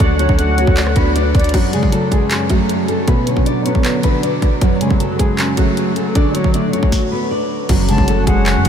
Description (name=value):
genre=hip hop, trap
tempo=156 BPM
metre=4/4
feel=half-time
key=F# minor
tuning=A4 = 439 Hz
part: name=nylon-string guitar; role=melody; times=0.0-8.7 s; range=F#3 to D5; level=-20 LUFS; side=equal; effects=none
part: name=dark concert grand piano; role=accompaniment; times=0.0-8.7 s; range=F#2 to D5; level=-19 LUFS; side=equal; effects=ensemble chorus
part: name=sweeping resonant pad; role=sustained chords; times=0.0-8.7 s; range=D2 to F#5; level=-23 LUFS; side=right 1 dB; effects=chorus
part: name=long sustained 808-style bass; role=bass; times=0.0-1.5, 7.7-8.7 s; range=F#1 to F#2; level=-17 LUFS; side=equal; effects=none
part: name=trap drum kit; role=drums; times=0.0-8.7 s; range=crash cymbal, handclaps, hi-hat, kick drum, rim click, snare drum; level=-17 LUFS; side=equal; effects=none
part: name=silver concert flute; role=second line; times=0.4-1.5, 7.9-8.7 s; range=D5 to A5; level=-27 LUFS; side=left 2 dB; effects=none
part: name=impact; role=sound effects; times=7.7-8.7 s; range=none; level=-24 LUFS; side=equal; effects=none
room=moderate huge ambient reverb, RT60 7.2 s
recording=dreamy mix soaked in reverb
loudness=-13 LUFS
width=side -8 dB against mid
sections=0.0-1.5 A section; 1.5-7.7 B section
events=stop 6.9-7.7; impact 7.7-8.7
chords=0.0 D; 1.5 F#m; 3.1 Bm; 4.6 F#m; 6.2 D; 7.7 F#m